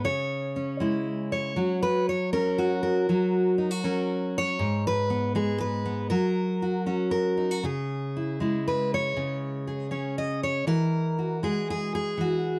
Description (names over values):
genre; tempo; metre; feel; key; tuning
folk, solo fingerstyle acoustic guitar; 119 BPM; 3/4; straight; unclear; A4 = 436 Hz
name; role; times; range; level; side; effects
fingerpicked steel-string acoustic guitar; solo; 0.0-12.6 s; G#2 to D#5; -27 LUFS; equal; none
room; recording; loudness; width
light reverb; dark, warm production; -27 LUFS; mono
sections
0.0-7.6 A section; 7.6-12.6 B section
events
none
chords
0.0 C#m; 1.6 F#; 4.6 G#m; 6.1 F#; 7.6 C#m; 10.7 Eadd9